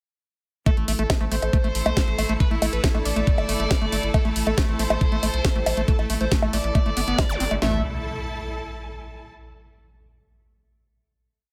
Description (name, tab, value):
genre	psychedelic trance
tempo	138 BPM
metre	4/4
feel	straight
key	A minor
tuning	A4 = 437 Hz
part	overdriven synth lead	melody	0.7-7.8 s	A3 to E5	-32 LUFS	equal	distortion, phaser, sidechain pumping, tape echo
part	evolving wavetable pad	sustained chords	1.3-7.7 s	A3 to A4	-37 LUFS	equal	chorus, built-in reverb, sidechain pumping
part	overdriven acid bass	riff	0.7-7.8 s	G3 to C4	-32 LUFS	equal	cassette tape, sidechain pumping, delay
part	drum and bass drum kit	drums	0.7-7.7 s	kick drum, snare drum	-23 LUFS	equal	none
part	drum and bass drum kit	drums	0.7-7.6 s	bongos, hi-hat, snare drum	-29 LUFS	equal	none
part	bright studio string section	texture	0.7-9.3 s	E4 to A5	-37 LUFS	equal	sidechain pumping
part	round analog bass	bass	0.8-7.8 s	G1 to B1	-28 LUFS	equal	none
part	resonant blip pluck	second line	1.2-7.6 s	E3 to D4	-43 LUFS	equal	none
part	zap and impact	sound effects	7.3-9.4 s	none	-36 LUFS	equal	none
room	little or no reverb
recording	none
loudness	-23 LUFS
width	mono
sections	0.7-7.6 drop; 7.6-9.4 final chord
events	drop 0.7-7.6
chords	0.7 A5